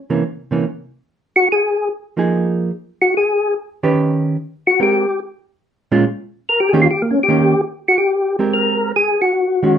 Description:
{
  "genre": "jazz",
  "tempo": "145 BPM",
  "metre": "4/4",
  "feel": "swing 66% on 8ths",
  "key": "Ab major",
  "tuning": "A4 = 440 Hz",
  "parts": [
    { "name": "hollow-body jazz guitar", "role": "accompaniment", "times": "0.1-9.8 s", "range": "Bb2 to B4", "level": "-16 LUFS", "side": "right 3 dB", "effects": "none" },
    { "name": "percussive tonewheel organ", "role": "melody", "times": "1.4-9.8 s", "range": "Bb3 to Bb4", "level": "-14 LUFS", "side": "left 2 dB", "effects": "chorus vibrato, slow rotary speaker" }
  ],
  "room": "wet studio reverb, RT60 0.5 s",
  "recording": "rough home demo mix",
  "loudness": "-15 LUFS",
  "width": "side -8 dB against mid",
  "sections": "0.0-7.7 A section; 7.7-9.8 B section",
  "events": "tonewheel organ solo 0.0-7.7",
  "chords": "0.2 C7b9; 1.1 Fm7; 2.7 N.C.; 3.6 Ebaug7; 4.4 Abmaj9; 5.2 Bbm7; 6.0 Eb7; 7.7 Abmaj9"
}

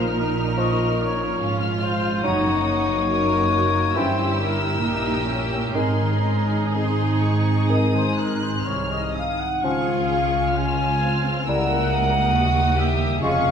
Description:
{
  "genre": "classical, slow romantic movement for symphony orchestra",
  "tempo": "61-74 BPM",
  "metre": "4/4",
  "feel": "rubato",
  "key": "Db major",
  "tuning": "A4 = 441 Hz",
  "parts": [
    { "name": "rich symphonic violin section", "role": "melody", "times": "0.0-13.5 s", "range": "C6 to Gb6", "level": "-31 LUFS", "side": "left 2 dB", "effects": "none" },
    { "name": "rich symphonic violin section", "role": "second line", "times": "0.0-13.5 s", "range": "F4 to C5", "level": "-30 LUFS", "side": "left 2 dB", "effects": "none" },
    { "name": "warm chamber viola section", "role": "accompaniment", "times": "0.0-13.5 s", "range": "Bb3 to Gb4", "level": "-30 LUFS", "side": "right 4 dB", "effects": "none" },
    { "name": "dark French horn section", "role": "sustained chords", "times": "0.0-13.5 s", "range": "G3 to F4", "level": "-29 LUFS", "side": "left 3 dB", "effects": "none" },
    { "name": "concert harp", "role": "arpeggios", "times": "0.0-13.5 s", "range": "F2 to Gb5", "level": "-29 LUFS", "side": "left 6 dB", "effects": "none" },
    { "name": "mellow trumpet section", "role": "stabs", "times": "0.0-13.5 s", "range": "Ab4 to Ab5", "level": "-25 LUFS", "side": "left 1 dB", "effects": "none" },
    { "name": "rich symphonic cello section", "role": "bass", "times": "0.0-13.5 s", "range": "C2 to Bb2", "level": "-28 LUFS", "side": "right 3 dB", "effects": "none" },
    { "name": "warm symphonic double bass section", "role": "bass", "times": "0.0-13.5 s", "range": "F1 to Eb2", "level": "-26 LUFS", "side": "right 2 dB", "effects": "none" },
    { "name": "bright large flute ensemble", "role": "second line", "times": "0.6-13.5 s", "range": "G5 to Db6", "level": "-32 LUFS", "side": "left 3 dB", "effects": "none" },
    { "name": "dark clarinet", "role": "second line", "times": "0.6-13.5 s", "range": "C4 to F4", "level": "-32 LUFS", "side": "left 1 dB", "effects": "none" },
    { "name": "mellow bassoon", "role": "accompaniment", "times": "0.6-13.5 s", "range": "Eb3 to Ab3", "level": "-29 LUFS", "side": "right 2 dB", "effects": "none" }
  ],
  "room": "wet recital hall reverb, RT60 1.5 s",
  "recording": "minimal, uncompressed stereo recording",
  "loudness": "-19 LUFS",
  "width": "side -7 dB against mid",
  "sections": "0.0-13.5 A section",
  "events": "none",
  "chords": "0.0 Bbm; 2.2 Ebm/Gb; 4.0 Gdim7; 5.8 Ab; 9.6 Db; 11.5 Dbdim7"
}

